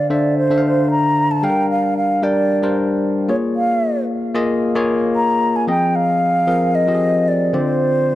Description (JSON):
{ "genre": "amapiano", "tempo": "113 BPM", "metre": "4/4", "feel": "straight", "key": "G minor", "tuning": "A4 = 440 Hz", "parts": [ { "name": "mellow hollow concert flute", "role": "melody", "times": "0.0-8.2 s", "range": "C5 to Bb5", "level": "-18 LUFS", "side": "right 1 dB", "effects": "tape echo" }, { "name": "barky tine electric piano", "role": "accompaniment", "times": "0.0-8.2 s", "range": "D3 to G5", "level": "-17 LUFS", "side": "left 1 dB", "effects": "none" } ], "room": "light reverb, studio reverb", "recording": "dark, warm production", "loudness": "-15 LUFS", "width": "side -14 dB against mid", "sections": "0.0-8.2 A section", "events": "none", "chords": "0.0 Dm7; 1.4 Gm7; 3.3 Bbm7; 5.7 Fm7; 7.5 Dm7" }